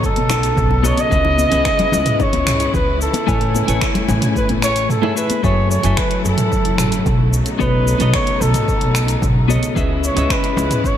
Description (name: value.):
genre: sunset chillout.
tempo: 111 BPM.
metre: 4/4.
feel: straight.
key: F# dorian.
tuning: A4 = 440 Hz.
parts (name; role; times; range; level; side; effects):
warm flugelhorn; melody; 0.0-11.0 s; A4 to D#5; -20 LUFS; equal; ping-pong delay, shimmer reverb.
clean electric guitar; accompaniment; 0.0-11.0 s; F#3 to G#5; -22 LUFS; left 1 dB; auto-pan, shimmer reverb.
clear symphonic string section; sustained chords; 0.0-11.0 s; C#3 to G#5; -25 LUFS; left 1 dB; shimmer reverb.
deep house drum kit; drums; 0.0-11.0 s; cabasa, finger snaps, hi-hat, toms; -23 LUFS; equal; gated reverb.
electronic kick drum; drums; 0.0-11.0 s; none; -22 LUFS; equal; none.
upright bass; bass; 0.2-10.7 s; F#1 to C#2; -19 LUFS; equal; none.
congas and bongos; percussion; 0.2-5.4 s; none; -25 LUFS; left 5 dB; none.
room: light reverb, small room reverb.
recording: bright 1980s-style digital production.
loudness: -14 LUFS.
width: side -10 dB against mid.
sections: 0.0-5.4 A section; 5.4-11.0 A section.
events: kick drops out 4.9-5.4.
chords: 0.0 B9; 1.1 C#m7; 3.3 Amaj7; 5.4 F#m7; 7.3 B9; 9.8 C#m7.